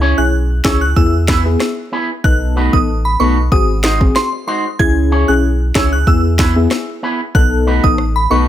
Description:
dancehall; 94 BPM; 4/4; straight; C# minor; A4 = 441 Hz
deep mellow chord stab; accompaniment; 0.0-8.5 s; B3 to A4; -18 LUFS; left 3 dB; chorus
electric guitar with an envelope filter; arpeggios; 0.0-8.5 s; G#3 to C#5; -20 LUFS; right 2 dB
warm sub bass; bass; 0.0-8.5 s; G#1 to E2; -15 LUFS; equal
glassy synth bell; melody; 0.2-8.4 s; B5 to G#6; -19 LUFS; right 2 dB; chorus, ping-pong delay
afro-pop drum kit; drums; 0.6-8.1 s; kick drum, rim click, snare drum; -15 LUFS; equal
digital ambience; -12 LUFS; side -12 dB against mid
0.0-8.5 A section
0.0 C#m; 1.0 E; 2.2 B7; 3.5 G#7; 4.8 C#m; 6.1 E; 7.3 B7

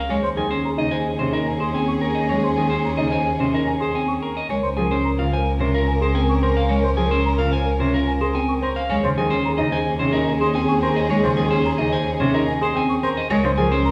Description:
classical, minimalist pattern music; 109 BPM; 4/4; straight; A4 = 440 Hz
electric guitar at the edge of break-up; melody; 0.0-13.9 s; Bb4 to Ab5; -28 LUFS; equal
mellow French horn; second line; 0.1-13.9 s; Ab4 to Bb4; -30 LUFS; equal
clear cello; accompaniment; 0.1-13.7 s; C3 to Ab3; -29 LUFS; equal
rich studio violin section; sustained chords; 0.1-13.9 s; Db4 to Bb4; -32 LUFS; equal
mellow hollow concert flute; arpeggios; 0.1-13.9 s; Ab5 to Db6; -32 LUFS; equal
clear double bass; bass; 0.1-13.9 s; Db2 to Eb2; -26 LUFS; equal
warm grand piano; arpeggios; 0.2-13.9 s; C4 to C5; -27 LUFS; equal
wet recital hall reverb, RT60 1.5 s; heard from further back in the room; -21 LUFS; mono
0.0-13.9 A section
0.1 Eb7sus4; 4.5 Db6; 8.9 Eb7sus4; 13.3 Db6

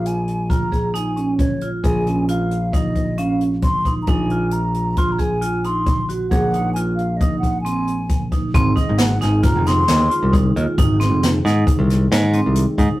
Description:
progressive instrumental, band music in an uneven meter; 134 BPM; 5/4; straight; A4 = 441 Hz
mellow hollow silver concert flute; melody; 0.0-10.3 s; Db5 to C6; -24 LUFS; equal
vibraphone with hard mallets; arpeggios; 0.0-12.9 s; C4 to Ab4; -24 LUFS; right 3 dB
modern bright picked electric bass; bass; 0.0-12.9 s; F1 to Ab2; -20 LUFS; equal
jazz brush drum kit; drums; 0.1-12.9 s; hi-hat, kick drum, snare drum; -20 LUFS; equal
tonewheel organ; accompaniment; 8.5-13.0 s; Eb3 to C4; -26 LUFS; left 2 dB; chorus vibrato, slow rotary speaker
moderate studio reverb, RT60 0.6 s; rough rehearsal-room recording; -16 LUFS; side -17 dB against mid
0.0-8.5 A section; 8.5-13.0 B section
0.0 Bbm7; 4.1 Ab5/Bb; 8.5 Ab

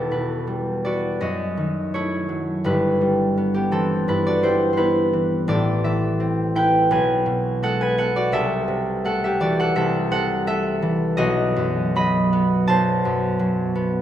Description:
classical, solo harp piece; 84 BPM; 4/4; rubato; E minor; A4 = 439 Hz
concert harp; solo; 0.0-14.0 s; E1 to B5; -19 LUFS; equal
wet concert hall reverb, RT60 2.4 s; -19 LUFS; side -11 dB against mid
0.0-14.0 A section
0.0 Em; 1.2 D#dim/F#; 2.6 Em/G; 5.5 Am; 6.9 Bm6; 8.4 Am/C; 11.2 B

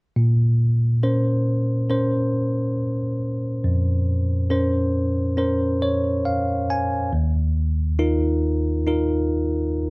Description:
pop; 69 BPM; 4/4; straight; Bb minor; A4 = 440 Hz
bell-like tine electric piano; accompaniment; 0.2-9.9 s; Eb2 to Ab5; -19 LUFS; equal
little or no reverb; recorded outdoors, with no room sound; -19 LUFS; side -32 dB against mid
0.2-9.9 A section
tine electric piano fill 5.4-7.1
0.2 Bbmadd9; 7.1 Ebsus2

